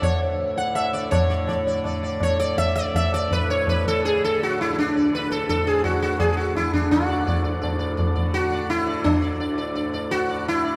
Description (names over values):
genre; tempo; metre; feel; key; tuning
indian classical, Hindustani; 167 BPM; 4/4; straight; D raga yaman; A4 = 440 Hz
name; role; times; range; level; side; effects
sitar; melody; 0.0-10.8 s; D4 to F#5; -24 LUFS; equal; none
tanpura; drone; 0.0-10.8 s; D2 to D3; -34 LUFS; equal; none
tabla; percussion; 0.0-10.6 s; none; -28 LUFS; equal; none
room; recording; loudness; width
wet cathedral reverb, RT60 7.0 s; in a vast, echoing space; -23 LUFS; mono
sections
0.0-1.1 A section; 1.1-10.8 B section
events
speeding up 0.0-10.8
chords
none